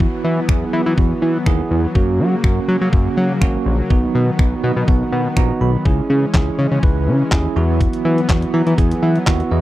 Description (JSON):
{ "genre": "dance-pop", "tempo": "123 BPM", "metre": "4/4", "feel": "straight", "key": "unclear", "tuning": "A4 = 440 Hz", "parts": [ { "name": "bell-like tine electric piano", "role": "accompaniment", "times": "0.0-9.6 s", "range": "A#3 to B5", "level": "-22 LUFS", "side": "right 6 dB", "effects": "medium stereo tremolo, sidechain pumping" }, { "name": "soft supersaw", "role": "sustained chords", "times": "0.0-9.6 s", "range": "C#3 to C#4", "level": "-24 LUFS", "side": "left 2 dB", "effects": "sidechain pumping" }, { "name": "fat analog bass", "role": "bass", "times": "0.0-9.6 s", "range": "G#1 to F#3", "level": "-17 LUFS", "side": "left 1 dB", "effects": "sidechain pumping" }, { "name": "detuned 8-bit digital drum machine", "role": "drums", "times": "0.0-9.5 s", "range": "finger snaps, handclaps, hi-hat, kick drum, snare drum", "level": "-16 LUFS", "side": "left 1 dB", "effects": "none" }, { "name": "downlifter", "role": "sound effects", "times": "0.0-2.0 s", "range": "none", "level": "-45 LUFS", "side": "left 2 dB", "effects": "none" } ], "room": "little or no reverb", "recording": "dry, close 1970s-style studio recording", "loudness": "-14 LUFS", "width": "side -15 dB against mid", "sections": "0.0-9.6 A section", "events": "tine electric piano fill 4.4-5.9, 8.3-9.6", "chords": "0.0 Esus2; 2.0 F#; 3.9 B; 5.9 C#m; 7.6 Esus2" }